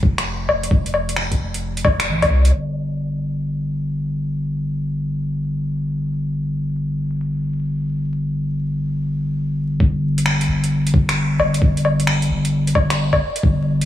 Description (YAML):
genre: future garage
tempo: 132 BPM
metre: 4/4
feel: swing 66% on 16ths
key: unclear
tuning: A4 = 440 Hz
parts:
  - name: warm sub bass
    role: bass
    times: 0.0-13.9 s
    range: F1 to C2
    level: -20 LUFS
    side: equal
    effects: sidechain pumping
  - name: electronic kick drum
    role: drums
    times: 0.0-2.3, 9.8-13.6 s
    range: none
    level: -17 LUFS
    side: equal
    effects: small room ambience
  - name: garage drum kit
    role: drums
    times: 0.2-2.5, 10.2-13.9 s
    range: finger snaps, hi-hat, woodblock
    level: -21 LUFS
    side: left 1 dB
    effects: overdrive, small room ambience
room: light reverb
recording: vinyl crackle, low-pass filter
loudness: -18 LUFS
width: side -12 dB against mid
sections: 0.0-2.5 A section; 2.5-9.8 B section; 9.8-13.9 C section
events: filter sweep 2.5-9.8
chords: none